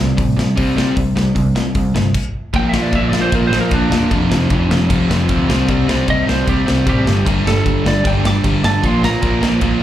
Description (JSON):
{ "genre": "punk rock", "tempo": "153 BPM", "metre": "4/4", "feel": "straight", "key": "unclear", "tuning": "A4 = 440 Hz", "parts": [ { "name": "crunchy overdriven guitar", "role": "riff", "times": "0.0-9.8 s", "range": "F2 to C4", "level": "-21 LUFS", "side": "right 9 dB", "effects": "slapback echo" }, { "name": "overdriven semi-hollow guitar", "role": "riff", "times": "0.0-9.8 s", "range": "F2 to C4", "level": "-18 LUFS", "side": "left 4 dB", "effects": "none" }, { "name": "overdriven picked electric bass", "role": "bass", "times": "0.0-9.8 s", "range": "E1 to C3", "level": "-20 LUFS", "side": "equal", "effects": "none" }, { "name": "big rock drum kit", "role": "drums", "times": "0.2-9.7 s", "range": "crash cymbal, hi-hat, kick drum, snare drum", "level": "-20 LUFS", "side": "equal", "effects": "none" }, { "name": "lightly driven lead guitar", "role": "melody", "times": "2.6-9.4 s", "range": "D4 to D6", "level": "-21 LUFS", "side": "right 2 dB", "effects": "slapback echo" } ], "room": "small room reverb", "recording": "live gig heard through the venue's PA, club ambience", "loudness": "-13 LUFS", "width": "side -12 dB against mid", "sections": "0.0-2.5 A section; 2.5-9.8 B section", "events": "stop 2.1-2.5; lead electric guitar solo 2.5-9.8", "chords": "0.0 C5; 2.5 Bb; 4.1 F5; 5.5 C5; 7.1 G5; 8.8 Bb5", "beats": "0.18 0.57 | 0.96 1.36 1.75 2.14 | 2.54 2.93 3.32 3.72 | 4.11 4.50 4.90 5.29 | 5.68 6.08 6.47 6.86 | 7.25 7.65 8.04 8.43 | 8.83 9.22 9.61" }